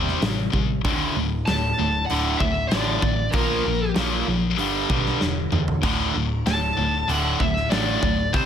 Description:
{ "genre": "hard rock", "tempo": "96 BPM", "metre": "4/4", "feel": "straight", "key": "unclear", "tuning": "A4 = 440 Hz", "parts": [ { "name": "cranked stack guitar", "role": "riff", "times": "0.0-8.5 s", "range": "D2 to C4", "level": "-28 LUFS", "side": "right 9 dB", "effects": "overdrive" }, { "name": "heavy high-gain guitar", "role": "riff", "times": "0.0-8.5 s", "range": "D2 to C4", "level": "-26 LUFS", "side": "left 9 dB", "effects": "distortion" }, { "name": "hollow-body short-scale picked electric bass", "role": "bass", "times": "0.0-8.5 s", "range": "D1 to E2", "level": "-27 LUFS", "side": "equal", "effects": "none" }, { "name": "big rock drum kit", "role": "drums", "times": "0.1-8.5 s", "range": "hi-hat, kick drum, snare drum, splash cymbal, toms", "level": "-26 LUFS", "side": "equal", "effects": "none" }, { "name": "high-gain lead guitar", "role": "melody", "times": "1.5-8.5 s", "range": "Bb4 to A5", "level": "-25 LUFS", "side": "equal", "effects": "distortion" } ], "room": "light reverb, small room ambience", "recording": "none", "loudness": "-20 LUFS", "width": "side -8 dB against mid", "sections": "0.0-8.5 A section", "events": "drum fill 5.2-5.8", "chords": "0.0 C; 0.8 D5; 3.3 Bb5; 4.6 G; 5.8 D5" }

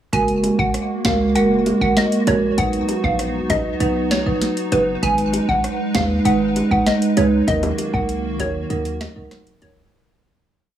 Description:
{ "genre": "dancehall", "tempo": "98 BPM", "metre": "4/4", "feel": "straight", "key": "Eb minor", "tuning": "A4 = 441 Hz", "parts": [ { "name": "hollow square pluck", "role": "melody", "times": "0.1-9.7 s", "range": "B4 to Ab5", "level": "-23 LUFS", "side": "equal", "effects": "chorus, digital delay" }, { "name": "marimba with medium mallets", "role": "accompaniment", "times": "0.1-9.8 s", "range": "F#3 to B4", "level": "-20 LUFS", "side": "right 2 dB", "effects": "sidechain pumping" }, { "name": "hollow soft pad", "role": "sustained chords", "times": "0.1-9.9 s", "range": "Eb3 to Cb5", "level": "-26 LUFS", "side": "equal", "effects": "ensemble chorus, sidechain pumping" }, { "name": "warm 808-style bass", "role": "bass", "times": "0.1-9.9 s", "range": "Gb1 to Eb2", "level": "-24 LUFS", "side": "equal", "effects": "none" }, { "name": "booming analog drum machine", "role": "drums", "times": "0.1-9.8 s", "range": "hi-hat, kick drum, rim click, snare drum", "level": "-24 LUFS", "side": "equal", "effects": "overdrive" }, { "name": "bongos", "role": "percussion", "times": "0.4-9.8 s", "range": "none", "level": "-28 LUFS", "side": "left 4 dB", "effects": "none" } ], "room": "light reverb, digital ambience", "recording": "small room ambience", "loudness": "-16 LUFS", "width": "side -10 dB against mid", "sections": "0.1-9.9 chorus", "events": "fade-out 7.5-9.9; break 8.7-9.9", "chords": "0.1 Gbadd9; 2.6 B; 5.0 Abm; 7.5 Ebm" }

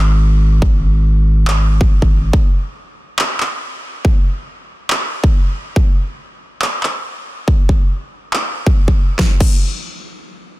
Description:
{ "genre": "future bass", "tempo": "140 BPM", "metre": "4/4", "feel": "swing 55% on 16ths, half-time", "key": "unclear", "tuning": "A4 = 440 Hz", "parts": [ { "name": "long sustained 808-style bass", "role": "bass", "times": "0.0-2.3 s", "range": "G#1", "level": "-12 LUFS", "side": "equal", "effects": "sidechain pumping" }, { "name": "electronic kick drum", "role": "drums", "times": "0.6-9.5 s", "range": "none", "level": "-12 LUFS", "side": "equal", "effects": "overdrive, studio reverb" }, { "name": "big-room dance drum kit", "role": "drums", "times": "1.5-9.5 s", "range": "crash cymbal, handclaps, snare drum", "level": "-22 LUFS", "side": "equal", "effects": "overdrive, studio reverb" } ], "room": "digital ambience", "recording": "dense, heavily limited modern master", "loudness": "-13 LUFS", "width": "side -18 dB against mid", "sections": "0.0-9.2 A section; 9.2-10.6 B section", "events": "none", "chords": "none" }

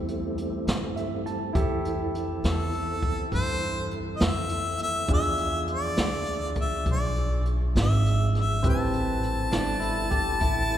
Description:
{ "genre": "slow blues", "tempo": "68 BPM (dotted quarters)", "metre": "12/8", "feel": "straight", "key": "A minor", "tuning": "A4 = 439 Hz", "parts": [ { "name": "clear concert grand piano", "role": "accompaniment", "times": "0.0-10.8 s", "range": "C4 to A5", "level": "-34 LUFS", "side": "right 2 dB", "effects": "none" }, { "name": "mellow tonewheel organ", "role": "sustained chords", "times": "0.0-10.8 s", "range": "E3 to A4", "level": "-35 LUFS", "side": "right 1 dB", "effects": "slow rotary speaker, chorus vibrato" }, { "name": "upright bass", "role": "bass", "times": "0.0-10.8 s", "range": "G1 to G2", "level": "-28 LUFS", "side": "equal", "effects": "none" }, { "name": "jazz brush drum kit", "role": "drums", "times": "0.1-10.8 s", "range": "hi-hat, kick drum, snare drum", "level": "-30 LUFS", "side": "equal", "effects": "none" }, { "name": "clear harmonica", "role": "melody", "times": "2.5-10.8 s", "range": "A4 to A5", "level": "-29 LUFS", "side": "left 2 dB", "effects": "none" }, { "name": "electric guitar through a small old amp", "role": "second line", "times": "9.5-10.8 s", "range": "D4 to G4", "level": "-33 LUFS", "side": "right 3 dB", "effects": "none" } ], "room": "wet cathedral reverb, RT60 4.2 s", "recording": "recorded in a church or concert hall", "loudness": "-24 LUFS", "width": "side -11 dB against mid", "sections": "0.0-10.8 A section", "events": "grand piano fill 0.7-1.6", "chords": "0.0 Am7; 1.6 Fmaj7; 5.1 E7b9; 8.6 Am7" }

